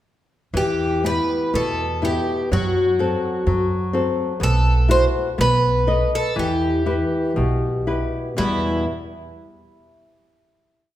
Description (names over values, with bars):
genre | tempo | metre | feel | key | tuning
fado-style ballad | 61 BPM | 2/4 | rubato | E minor | A4 = 440 Hz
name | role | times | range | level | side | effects
flamenco guitar | accompaniment | 0.5-8.8 s | E2 to D#5 | -23 LUFS | left 2 dB | none
upright bass | bass | 0.5-8.8 s | B1 to F#2 | -23 LUFS | right 1 dB | none
picked twelve-string acoustic guitar | melody | 0.6-8.8 s | E4 to C5 | -22 LUFS | equal | none
room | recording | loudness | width
wet recital hall reverb, RT60 1.7 s | recorded in a church or concert hall | -18 LUFS | side -13 dB against mid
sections
0.5-8.4 A section; 8.4-10.3 final chord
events
none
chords
0.5 Em; 2.5 F#dim; 4.4 B7sus4; 5.4 B7; 6.4 Em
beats
| 0.54 1.53 | 2.51 3.46 | 4.41 5.38 | 6.37 7.37 | 8.38